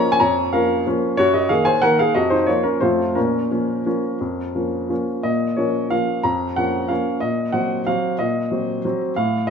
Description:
classical, piano waltz; 166-195 BPM; 3/4; rubato; Bb minor; A4 = 445 Hz
clear upright piano; solo; 0.0-9.5 s; F2 to Bb5; -18 LUFS; equal
moderate recital hall reverb, RT60 1.6 s; -18 LUFS; side -6 dB against mid
0.0-5.3 A section; 5.3-9.5 B section
0.0 Bbm; 1.2 Ebm/Gb; 2.2 Bbm/F; 2.8 F; 3.2 Bbm; 7.2 Cm7b5/Bb

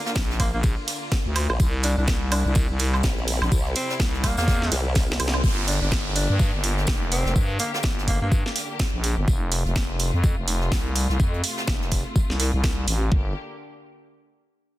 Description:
bass house; 125 BPM; 4/4; swing 59% on 16ths; G dorian; A4 = 440 Hz
rich studio string section; sustained chords; 0.0-13.3 s; C3 to G4; -35 LUFS; left 2 dB; sidechain pumping
growling alto saxophone; melody; 0.1-8.3 s; Bb3 to D4; -30 LUFS; equal; tape echo
jazz brush drum kit; drums; 0.1-13.0 s; hi-hat, snare drum, tambourine; -35 LUFS; equal; high-pass filter on hats, soft clipping on snare, high-pass filter on snare, high-pass filter on perc, high-pass filter on room
growling FM bass; bass; 0.2-13.3 s; F1 to G2; -24 LUFS; equal; tube saturation, sidechain pumping
electronic kick drum; drums; 0.2-13.2 s; -22 LUFS; equal; overdrive
house drum kit; drums; 0.2-13.0 s; hi-hat, ride cymbal, snare drum, woodblock; -28 LUFS; right 2 dB
formant-sweep wobble bass; bass; 1.5-5.4 s; Bb1 to C2; -25 LUFS; equal; chorus, overdrive, sidechain pumping
downlifter; sound effects; 5.4-9.3 s; -34 LUFS; right 2 dB
studio reverb; dense, heavily limited modern master; -20 LUFS; side -16 dB against mid
0.0-5.4 A section; 5.4-13.1 B section; 13.1-14.8 C section
drop 0.0-5.4; drum fill 5.0-5.4; band accent 5.3
0.0 Bb; 1.6 C; 5.4 Gm; 9.3 F; 13.1 Gm

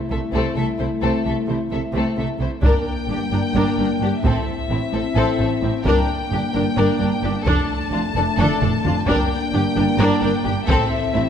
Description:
cinematic, epic orchestral film score; 261 BPM (eighths); 7/8; straight; A4 = 440 Hz
dark French horn section; sustained chords; 0.0-11.3 s; A3 to E4; -24 LUFS; left 3 dB
warm symphonic violin section; melody; 0.1-11.3 s; A4 to A5; -28 LUFS; left 5 dB
warm symphonic violin section; second line; 0.1-11.2 s; C4 to Bb4; -26 LUFS; left 4 dB
warm symphonic viola section; accompaniment; 0.1-11.2 s; A3 to D4; -26 LUFS; right 1 dB
rich symphonic double bass section; bass; 0.1-11.2 s; F1 to C2; -26 LUFS; right 3 dB
warm symphonic cello section; bass; 0.1-11.2 s; F2 to C3; -26 LUFS; right 2 dB
taiko ensemble; drums; 2.6-11.1 s; -22 LUFS; equal
timpani; percussion; 10.7-11.3 s; A2; -27 LUFS; right 1 dB
moderate concert hall reverb, RT60 2.0 s; -17 LUFS; side -8 dB against mid
0.0-2.6 A section; 2.6-11.3 B section
build-up 0.0-2.6; drum fill 8.4-9.1
0.0 Am/C; 2.6 Gm; 4.2 Am; 5.9 Gm; 7.5 Dm/F; 9.1 Gm; 10.7 Am

